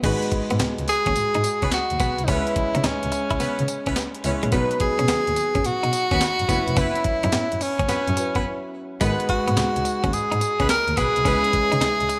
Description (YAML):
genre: R&B, new jack swing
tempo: 107 BPM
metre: 4/4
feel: swing 67% on 16ths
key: G# minor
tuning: A4 = 440 Hz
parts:
  - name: warm concert grand piano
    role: accompaniment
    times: 0.0-12.2 s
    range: F#3 to C#5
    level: -31 LUFS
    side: equal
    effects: lush chorus
  - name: direct-recorded clean electric guitar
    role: riff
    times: 0.0-12.1 s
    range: G#3 to E4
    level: -33 LUFS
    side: equal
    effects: lush chorus
  - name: mellow horn section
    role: stabs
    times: 0.0-11.5 s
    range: B3 to B4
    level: -34 LUFS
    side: equal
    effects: none
  - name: dark double bass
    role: bass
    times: 0.0-12.1 s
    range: E#1 to C#3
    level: -30 LUFS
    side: equal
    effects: none
  - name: breakbeat sampler-style drum kit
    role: drums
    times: 0.0-12.2 s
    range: crash cymbal, handclaps, hi-hat, kick drum, snare drum, tambourine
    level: -29 LUFS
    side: equal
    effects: none
  - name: breathy tenor saxophone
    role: melody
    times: 0.9-12.2 s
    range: C#4 to A#4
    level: -25 LUFS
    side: equal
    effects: none
room: moderate plate reverb, RT60 2.2 s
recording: bright 1980s-style digital production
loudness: -22 LUFS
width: mono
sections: 0.0-12.2 A section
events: break 8.4-9.0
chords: 0.0 G#m7; 2.3 C#m7; 4.5 B; 6.5 F#7sus4; 9.0 G#m7; 11.3 C#m7